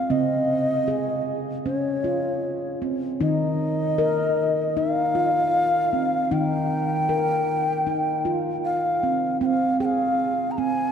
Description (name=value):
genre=world meditative, meditative tuned percussion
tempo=77 BPM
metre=4/4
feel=straight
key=unclear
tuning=A4 = 439 Hz
part: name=breathy bass bansuri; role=melody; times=0.0-10.9 s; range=Db5 to Bb5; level=-24 LUFS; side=equal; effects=tape echo
part: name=handpan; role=arpeggios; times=0.0-10.9 s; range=Db3 to Bb4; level=-24 LUFS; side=equal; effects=none
room=wet cathedral reverb, RT60 5.6 s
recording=dark, warm production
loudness=-21 LUFS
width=side -7 dB against mid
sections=0.0-9.4 A section; 9.4-10.9 B section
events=none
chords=0.1 Db; 3.2 Eb; 9.4 Ab